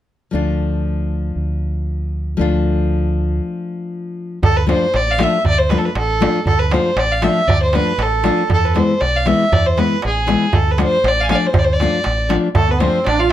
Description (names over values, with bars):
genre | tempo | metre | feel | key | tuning
balkan folk, Balkan wedding band | 118 BPM | 2/4 | swing 54% on 16ths | D dorian sharp4 | A4 = 441 Hz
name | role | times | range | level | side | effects
nylon-string guitar | accompaniment | 0.3-13.0 s | E3 to F4 | -19 LUFS | left 4 dB | none
deep dub fingered electric bass | bass | 0.3-13.3 s | A1 to E2 | -19 LUFS | equal | none
warm fiddle | melody | 4.4-13.3 s | G#4 to G#5 | -17 LUFS | right 1 dB | none
darbuka | percussion | 4.4-13.3 s | none | -20 LUFS | right 2 dB | none
musette accordion | second line | 12.6-13.3 s | A3 to F4 | -19 LUFS | right 5 dB | none
room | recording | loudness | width
moderate small room reverb, RT60 0.6 s | none | -14 LUFS | side -12 dB against mid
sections
0.3-4.4 A section; 4.4-12.6 B section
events
break 3.4-4.4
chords
0.3 Dm; 8.5 E; 10.5 Dm